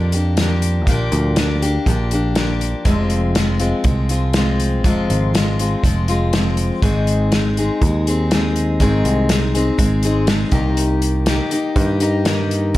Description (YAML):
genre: folk rock and heartland rock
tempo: 121 BPM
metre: 4/4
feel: straight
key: unclear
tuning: A4 = 440 Hz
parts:
  - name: picked steel-string acoustic guitar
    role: accompaniment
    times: 0.0-12.8 s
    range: F2 to Ab4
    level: -19 LUFS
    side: left 2 dB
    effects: none
  - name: picked electric bass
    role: bass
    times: 0.0-12.8 s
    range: F1 to G2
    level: -19 LUFS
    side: right 1 dB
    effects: none
  - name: loose indie drum kit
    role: drums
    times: 0.1-12.8 s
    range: hi-hat, kick drum, snare drum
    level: -20 LUFS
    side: equal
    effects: none
room: small room reverb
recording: none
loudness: -15 LUFS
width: side -16 dB against mid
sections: 0.0-12.8 A section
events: none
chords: 0.0 Bb6; 2.9 Fm; 6.8 Ab; 10.5 Cm7